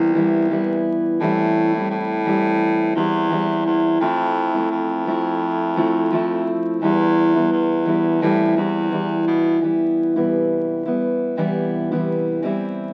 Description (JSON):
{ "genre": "acoustic pop", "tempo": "86 BPM", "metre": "4/4", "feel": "swing 55% on 16ths", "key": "A minor", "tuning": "A4 = 440 Hz", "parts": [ { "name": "fingerpicked steel-string acoustic guitar", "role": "accompaniment", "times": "0.0-12.9 s", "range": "A2 to E4", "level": "-21 LUFS", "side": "equal", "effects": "none" }, { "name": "clear baritone saxophone", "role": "bass", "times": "0.0-9.6 s", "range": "C2 to B2", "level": "-25 LUFS", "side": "equal", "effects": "none" } ], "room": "light reverb", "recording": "very old 78 rpm record, vinyl crackle", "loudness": "-20 LUFS", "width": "mono", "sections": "0.0-9.6 A section; 9.6-12.9 B section", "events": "none", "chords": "0.0 Cmaj7; 1.2 Am7; 4.0 Fmaj7; 6.8 Em; 8.2 Am7; 9.6 Cmaj7; 12.4 Am7 (rootless)" }